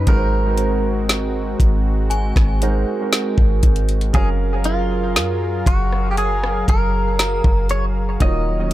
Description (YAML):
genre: contemporary R&B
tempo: 59 BPM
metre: 4/4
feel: straight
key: unclear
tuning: A4 = 442 Hz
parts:
  - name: direct-recorded clean electric guitar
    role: melody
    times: 0.0-8.7 s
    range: F4 to Eb5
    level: -24 LUFS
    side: equal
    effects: wide subtle chorus, tape echo
  - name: clear concert grand piano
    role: accompaniment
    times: 0.0-8.7 s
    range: Eb3 to F5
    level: -26 LUFS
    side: right 5 dB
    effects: tape echo
  - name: warm analog pad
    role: sustained chords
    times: 0.0-8.7 s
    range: Eb3 to F5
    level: -26 LUFS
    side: left 1 dB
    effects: chorus, sidechain pumping
  - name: warm 808-style bass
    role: bass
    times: 0.0-8.7 s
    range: Eb1 to Gb2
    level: -20 LUFS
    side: equal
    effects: none
  - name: smooth R&B drum kit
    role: drums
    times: 0.1-8.7 s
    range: hi-hat, kick drum, rim click, snare drum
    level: -17 LUFS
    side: equal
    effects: none
  - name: synth chime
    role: texture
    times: 2.1-8.7 s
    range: Ab5 to Bb5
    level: -31 LUFS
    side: left 2 dB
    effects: ensemble chorus, tape echo
room: digital ambience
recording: echo-heavy mix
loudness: -16 LUFS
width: side -15 dB against mid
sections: 0.0-8.7 A section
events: none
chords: 0.1 Ab9; 4.1 Gbmaj9; 8.2 Ebm7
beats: | 0.07 1.09 2.11 3.12 | 4.14 5.16 6.17 7.19 | 8.21